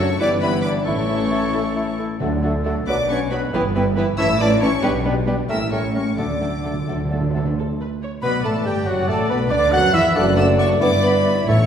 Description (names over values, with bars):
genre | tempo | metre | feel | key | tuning
quick classical-period movement for symphony orchestra | 85-95 BPM (dotted quarters) | 6/8 | rubato | D major | A4 = 440 Hz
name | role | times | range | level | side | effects
warm chamber violin section | melody | 0.0-11.7 s | F#5 to F#6 | -29 LUFS | left 2 dB | none
dark clarinet | second line | 0.0-11.6 s | C#4 to F#5 | -30 LUFS | left 1 dB | none
mellow hollow silver concert flute | second line | 0.0-11.5 s | E5 to F#6 | -32 LUFS | left 1 dB | none
rich studio violin section | second line | 0.0-11.7 s | C#4 to F#5 | -31 LUFS | left 3 dB | none
warm oboe | second line | 0.0-11.6 s | F#4 to F#5 | -31 LUFS | right 1 dB | none
dark bassoon | accompaniment | 0.0-11.6 s | E3 to F#4 | -25 LUFS | right 1 dB | none
warm studio viola section | accompaniment | 0.0-11.7 s | E3 to D5 | -27 LUFS | right 1 dB | none
dark French horn section | sustained chords | 0.0-11.7 s | F#3 to F#4 | -25 LUFS | left 3 dB | none
dark trumpet section | stabs | 0.0-11.7 s | F#4 to F#5 | -25 LUFS | left 1 dB | none
clear chamber double bass section | bass | 0.0-11.7 s | F#1 to F#2 | -25 LUFS | right 2 dB | none
warm chamber cello section | bass | 0.0-11.7 s | F#2 to F#3 | -26 LUFS | right 2 dB | none
timpani | percussion | 2.2-2.8, 6.2-7.5, 11.5-11.7 s | A2 to D3 | -24 LUFS | right 1 dB | none
room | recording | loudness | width
wet recital hall reverb, RT60 1.4 s | heard from further back in the room | -17 LUFS | side -8 dB against mid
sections
0.0-7.6 A section; 7.6-11.7 A section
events
timpani fill 6.2-7.6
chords
0.2 Em/G; 0.9 A; 2.2 D; 2.9 Bm; 3.5 Em/G; 4.2 A; 4.8 G/B; 5.5 A7b9; 6.2 D; 7.6 D5/A; 8.9 Bm/F#; 9.5 E5/D; 10.2 D/F#; 10.8 Em7/G